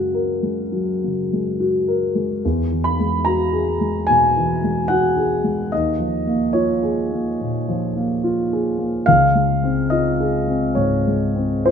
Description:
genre	classical, impressionist solo piano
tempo	63-74 BPM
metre	4/4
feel	rubato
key	unclear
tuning	A4 = 441 Hz
part	warm grand piano	solo	0.0-11.7 s	Db2 to B5	-17 LUFS	equal	none
room	moderate stone room reverb, RT60 1.3 s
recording	none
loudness	-17 LUFS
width	side -7 dB against mid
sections	0.0-11.7 A section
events	none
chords	0.0 Gbadd9; 2.4 Eadd9; 5.7 Eb9sus4; 9.1 Dbmaj7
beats	0.73 1.59 | 2.43 3.26 4.09 4.91 | 5.72 6.55 7.40 8.26 | 9.07 9.92 10.77 11.67

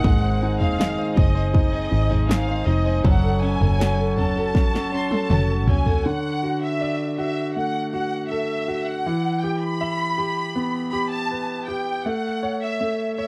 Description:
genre	pop ballad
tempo	80 BPM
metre	4/4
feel	straight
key	D major from 6.0 s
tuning	A4 = 445 Hz
part	warm studio violin section	melody	0.0-13.3 s	Eb5 to C6	-30 LUFS	equal	none
part	clear concert grand piano	accompaniment	0.0-13.3 s	D3 to E5	-28 LUFS	equal	none
part	glass harmonica	sustained chords	0.0-6.0 s	A4 to Eb6	-34 LUFS	equal	none
part	direct-recorded clean electric guitar	arpeggios	0.0-6.1 s	Ab2 to A4	-34 LUFS	equal	none
part	vintage muted fingered electric bass	bass	0.0-6.0 s	F1 to C2	-24 LUFS	equal	none
part	house drum kit	drums	0.0-6.0 s	kick drum, snare drum, toms	-23 LUFS	equal	none
room	little or no reverb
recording	dry, close 1970s-style studio recording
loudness	-22 LUFS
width	mono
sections	0.0-6.0 A section; 6.0-13.3 A section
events	drum fill 4.5-6.0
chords	0.0 Ab; 3.0 Gbm; 6.0 D; 9.0 Em; 12.0 A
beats	| 0.05 0.80 1.55 2.30 | 3.05 3.80 4.55 5.30 | 6.05 6.80 7.55 8.30 | 9.05 9.80 10.55 11.30 | 12.05 12.80

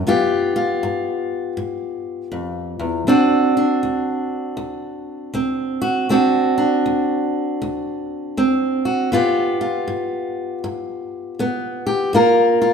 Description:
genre	blues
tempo	80 BPM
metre	4/4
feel	swing 63% on 8ths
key	unclear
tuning	A4 = 440 Hz
part	fingerpicked steel-string acoustic guitar	solo	0.0-12.7 s	D2 to Bb4	-18 LUFS	equal	none
room	moderate scoring stage reverb, RT60 1.9 s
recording	recorded in a church or concert hall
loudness	-17 LUFS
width	side -6 dB against mid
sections	0.0-12.7 A section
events	none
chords	0.1 G7; 3.1 D7; 9.1 G7; 12.1 Gm7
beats	| 0.06 0.82 1.57 2.33 | 3.08 3.84 4.59 5.35 | 6.10 6.86 7.61 8.37 | 9.12 9.88 10.63 11.39 | 12.15

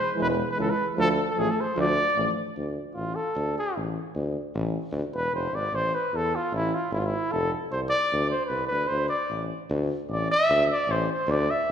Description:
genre	balkan folk, Balkan brass band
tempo	152 BPM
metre	2/4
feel	straight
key	D dorian sharp4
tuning	A4 = 440 Hz
part	mellow cornet	melody	0.0-11.7 s	E4 to E5	-25 LUFS	equal	none
part	mellow euphonium	accompaniment	0.2-2.3 s	E3 to F3	-31 LUFS	right 5 dB	none
part	warm trombone	accompaniment	0.2-2.3 s	G#3 to A3	-32 LUFS	left 3 dB	none
part	clear tuba	bass	0.2-11.7 s	E1 to E2	-29 LUFS	left 1 dB	none
room	wet recital hall reverb, RT60 1.6 s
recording	recorded in a church or concert hall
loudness	-24 LUFS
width	side -8 dB against mid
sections	0.0-2.6 A section; 2.6-11.7 B section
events	cornet solo 2.6-11.7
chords	0.0 E; 1.0 Dm; 2.6 D5; 5.7 A5; 7.3 F5; 8.1 Csus2; 8.9 D5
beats	| 0.18 0.58 | 0.97 1.37 | 1.77 2.16 | 2.56 2.96 | 3.35 3.75 | 4.14 4.54 | 4.94 5.33 | 5.73 6.13 | 6.52 6.92 | 7.31 7.71 | 8.10 8.50 | 8.89 9.29 | 9.68 10.07 | 10.47 10.86 | 11.25 11.64

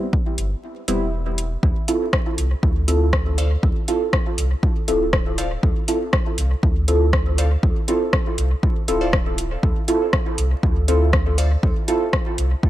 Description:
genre	dub techno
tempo	120 BPM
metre	4/4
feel	straight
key	unclear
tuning	A4 = 440 Hz
part	deep mellow chord stab	stabs	0.0-12.1 s	G3 to A4	-24 LUFS	right 1 dB	chorus, phaser, sidechain pumping, dub echo
part	electronic kick drum	drums	0.1-12.7 s	none	-21 LUFS	equal	overdrive
part	pure sine sub bass	bass	0.4-12.5 s	D1 to D2	-20 LUFS	equal	sidechain pumping
part	soft vintage rhythm box	drums	0.4-12.5 s	hi-hat, rim click	-25 LUFS	left 1 dB	dub echo
part	wavetable chord stab	riff	3.4-11.5 s	A4 to F5	-32 LUFS	equal	sidechain pumping, dub echo
room	light reverb, digital ambience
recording	vinyl crackle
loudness	-18 LUFS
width	side -14 dB against mid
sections	0.0-12.7 A section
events	break 0.6-1.6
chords	0.0 Am7 (rootless); 1.6 Dm7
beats	0.13 0.63 1.13 | 1.63 2.13 2.63 3.13 | 3.63 4.13 4.63 5.13 | 5.63 6.13 6.63 7.13 | 7.63 8.13 8.63 9.13 | 9.63 10.13 10.63 11.13 | 11.63 12.13 12.63

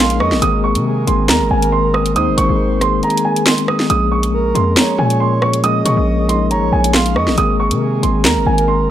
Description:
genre	hip hop, drill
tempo	138 BPM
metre	4/4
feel	half-time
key	unclear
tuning	A4 = 440 Hz
part	dark concert grand piano	melody	0.0-8.9 s	Ab5 to Eb6	-19 LUFS	right 4 dB	low-pass filter, digital delay
part	breathy flute-like synth lead	second line	0.0-8.9 s	Ab4 to F5	-23 LUFS	right 4 dB	chorus, tremolo, digital delay
part	mellow tine electric piano	accompaniment	0.0-8.9 s	Eb3 to Bb4	-19 LUFS	left 4 dB	medium stereo tremolo, low-pass filter
part	dark brass ensemble	sustained chords	0.0-8.9 s	Ab3 to Bb4	-27 LUFS	left 4 dB	none
part	distorted 808-style bass	bass	0.0-8.9 s	Ab1 to C3	-18 LUFS	equal	distortion
part	drill drum kit	drums	0.1-8.7 s	handclaps, hi-hat, rim click, snare drum	-16 LUFS	equal	none
room	little or no reverb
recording	dark, warm production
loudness	-12 LUFS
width	side -11 dB against mid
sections	0.0-8.9 A section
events	kick muted 3.0-3.9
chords	0.4 Abadd9; 3.9 Bbm7; 7.4 Abadd9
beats	| 0.42 0.85 1.29 1.72 | 2.16 2.59 3.03 3.46 | 3.90 4.33 4.77 5.20 | 5.64 6.07 6.51 6.94 | 7.38 7.81 8.25 8.68

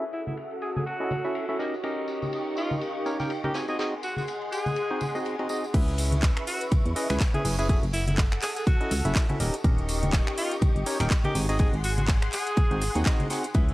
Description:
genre	piano house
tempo	123 BPM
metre	4/4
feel	swing 57% on 16ths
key	unclear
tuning	A4 = 439 Hz
part	analog string pad	sustained chords	0.0-13.7 s	G4 to E6	-35 LUFS	equal	ensemble chorus, sidechain pumping
part	percussive organ stab	riff	0.0-13.7 s	B#3 to G#5	-32 LUFS	equal	chorus, cassette tape, sidechain pumping
part	warbly tape-like pad	texture	0.0-5.7 s	C#4 to B#5	-35 LUFS	equal	chorus, built-in reverb, phaser, sidechain pumping
part	edgy alto saxophone	melody	0.1-13.0 s	E4 to G#4	-34 LUFS	equal	tape echo
part	unplugged drum kit	drums	0.1-13.7 s	hi-hat, ride cymbal, snare drum	-42 LUFS	left 2 dB	high-pass filter on hats, low-pass filter on hats, high-pass filter on cymbals, low-pass filter on cymbals, high-pass filter on snare, low-pass filter on snare, high-pass filter on room, low-pass filter on room
part	tambourine and congas	percussion	0.1-13.7 s	none	-34 LUFS	left 1 dB	none
part	solid FM bass	bass	5.7-13.7 s	D#1 to E2	-27 LUFS	equal	sidechain pumping
part	electronic kick drum	drums	5.7-13.7 s	none	-23 LUFS	equal	none
part	house drum kit	drums	5.7-13.7 s	crash cymbal, finger snaps, handclaps, hi-hat	-33 LUFS	right 1 dB	none
room	studio reverb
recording	dry, gritty hardware recording, low-pass filter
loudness	-24 LUFS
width	side -18 dB against mid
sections	0.0-5.7 A section; 5.7-13.7 B section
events	filter sweep on synth stab 0.0-5.7; filter sweep on analog synth pad 0.0-5.7; drop 5.7-13.7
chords	0.0 F#m7; 1.6 D#7; 3.5 G#7; 5.7 C#m7; 7.7 F#m7; 9.4 D#7; 11.4 G#7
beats	0.38 0.86 1.35 | 1.84 2.33 2.81 3.30 | 3.79 4.28 4.77 5.25 | 5.74 6.23 6.72 7.21 | 7.69 8.18 8.67 9.16 | 9.64 10.13 10.62 11.11 | 11.60 12.08 12.57 13.06 | 13.55

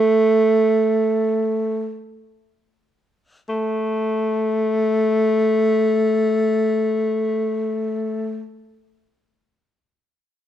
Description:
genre	japanese traditional, Japanese chamber music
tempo	free time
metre	none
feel	none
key	unclear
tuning	A4 = 440 Hz
part	breathy alto saxophone	solo	0.0-8.4 s	A3	-17 LUFS	equal	none
room	moderate recital hall reverb, RT60 1.3 s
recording	dark, warm production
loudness	-17 LUFS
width	side -10 dB against mid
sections	0.0-3.5 A section; 3.5-9.1 B section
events	slowing down 0.0-3.5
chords	none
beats	free time

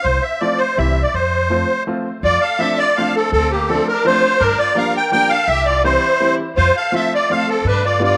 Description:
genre	musette waltz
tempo	166 BPM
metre	3/4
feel	straight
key	F major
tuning	A4 = 441 Hz
part	musette accordion	melody	0.0-8.2 s	G4 to G5	-18 LUFS	equal	none
part	upright bass	bass	0.0-8.1 s	G1 to G2	-23 LUFS	equal	none
part	clear upright piano	accompaniment	0.4-8.2 s	E3 to F4	-25 LUFS	equal	none
part	bright violin	second line	2.2-8.2 s	Bb3 to Bb4	-28 LUFS	equal	none
room	moderate spring reverb, RT60 2.2 s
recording	lossy compression artefacts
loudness	-16 LUFS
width	mono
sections	0.0-2.2 A section; 2.2-8.2 A section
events	none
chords	0.1 F/C; 0.8 C; 1.1 F; 2.2 F6; 3.3 Dm7; 4.4 Gm7; 5.5 C; 6.6 F; 7.7 G7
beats	| 0.06 0.42 0.78 | 1.15 1.51 1.88 | 2.24 2.61 2.97 | 3.33 3.69 4.05 | 4.41 4.77 5.13 | 5.49 5.85 6.21 | 6.57 6.94 7.30 | 7.66 8.02

